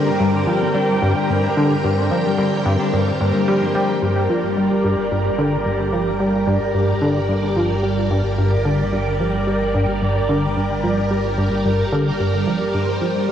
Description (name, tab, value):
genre	ambient, sequencer-driven space music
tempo	110 BPM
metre	4/4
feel	straight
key	G minor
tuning	A4 = 440 Hz
part	string machine, full ensemble	sustained chords	0.0-13.3 s	G3 to G5	-21 LUFS	equal	phaser, ensemble chorus
part	Celtic harp	arpeggios	0.0-6.4 s	D3 to D4	-24 LUFS	left 4 dB	auto-pan, analog delay
part	plucky analog bass	riff	0.0-13.3 s	G2 to G3	-20 LUFS	equal	lush chorus, analog delay
part	pulsing gated texture	texture	0.0-13.3 s	Bb4	-27 LUFS	right 4 dB	chorus, built-in reverb
part	fat analog bass	bass	4.0-13.3 s	G1	-26 LUFS	equal	none
room	wet shimmer reverb, RT60 8.0 s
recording	worn, warbling old tape, cassette tape, warbly pitch drift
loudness	-16 LUFS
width	side -9 dB against mid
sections	0.0-4.0 A section; 4.0-13.3 B section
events	filter sweep on analog synth bass 0.0-4.0, 4.0-13.3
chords	0.0 Gm